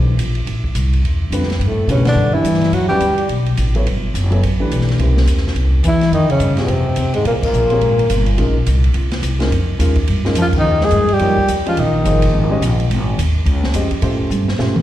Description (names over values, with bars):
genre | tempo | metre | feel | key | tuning
modal jazz | 213 BPM | 4/4 | swing 60% on 8ths | F minor from 6.1 s | A4 = 440 Hz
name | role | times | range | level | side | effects
dark upright piano | accompaniment | 0.0-14.7 s | D3 to Eb5 | -22 LUFS | equal | slapback echo
upright bass | bass | 0.0-14.8 s | F#1 to B2 | -16 LUFS | equal | none
open jazz drum kit | drums | 0.2-14.8 s | crash cymbal, hi-hat, kick drum, ride cymbal, snare drum, toms | -25 LUFS | right 1 dB | none
breathy tenor saxophone | melody | 1.6-3.3, 5.9-8.2, 10.4-12.6 s | Ab3 to Ab4 | -18 LUFS | equal | slapback echo
breathy bass clarinet | second line | 1.6-3.3, 5.8-8.2, 10.4-12.6 s | Ab2 to Ab3 | -19 LUFS | left 1 dB | slapback echo
room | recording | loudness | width
small room ambience | live gig heard through the venue's PA, recital hall reverb | -13 LUFS | side -13 dB against mid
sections
0.0-6.1 A section; 6.1-14.8 B section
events
band accent 2.0, 7.4, 10.5; drum fill 14.3-14.8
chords
0.0 Dm9; 1.6 Em9; 5.0 C7b9; 6.1 F9sus4; 14.0 A7alt